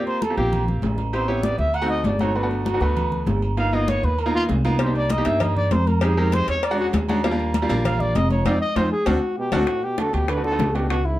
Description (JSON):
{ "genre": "Afro-Cuban jazz", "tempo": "196 BPM", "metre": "4/4", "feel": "straight", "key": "unclear", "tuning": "A4 = 438 Hz", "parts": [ { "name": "breathy trumpet", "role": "melody", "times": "0.0-11.2 s", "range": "D4 to F#5", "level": "-24 LUFS", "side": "equal", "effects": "none" }, { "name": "clear baby grand piano", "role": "accompaniment", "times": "0.0-10.9 s", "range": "G3 to G4", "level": "-25 LUFS", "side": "equal", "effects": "none" }, { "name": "agogo bells and timbales", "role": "percussion", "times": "0.1-11.1 s", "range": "none", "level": "-31 LUFS", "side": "right 6 dB", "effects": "none" }, { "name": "congas", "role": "percussion", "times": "0.1-11.2 s", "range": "none", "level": "-27 LUFS", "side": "left 2 dB", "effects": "none" }, { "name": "upright bass", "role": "bass", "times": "0.4-11.2 s", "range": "F1 to G2", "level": "-23 LUFS", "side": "equal", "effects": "none" }, { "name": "cowbell and bongos", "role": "percussion", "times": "4.8-11.1 s", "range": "none", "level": "-30 LUFS", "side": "left 5 dB", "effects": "none" }, { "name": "warm trombone", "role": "second line", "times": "9.4-11.2 s", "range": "G#2 to D3", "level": "-29 LUFS", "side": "right 3 dB", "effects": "none" } ], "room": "light reverb", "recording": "dark, warm production", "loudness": "-19 LUFS", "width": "side -15 dB against mid", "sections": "0.0-9.7 A section; 9.7-11.2 B section", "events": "trumpet solo 0.0-9.7; drum fill 8.5-9.7; band accent 8.5-9.7", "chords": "0.0 Bbmaj7sus2; 1.1 Am9; 1.7 D7b9; 2.4 Gmaj9; 3.6 G7alt; 4.8 Cm7; 6.0 Fm9; 6.6 E13; 7.2 Ebmaj9; 8.5 F5; 9.1 D7; 9.7 Gmaj9#11", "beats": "0.22 0.52 0.83 | 1.13 1.44 1.74 2.05 | 2.35 2.66 2.96 3.27 | 3.58 3.88 4.18 4.49 | 4.79 5.10 5.41 5.71 | 6.02 6.32 6.63 6.93 | 7.24 7.54 7.85 8.15 | 8.46 8.77 9.07 9.38 | 9.68 9.99 10.29 10.60 | 10.91" }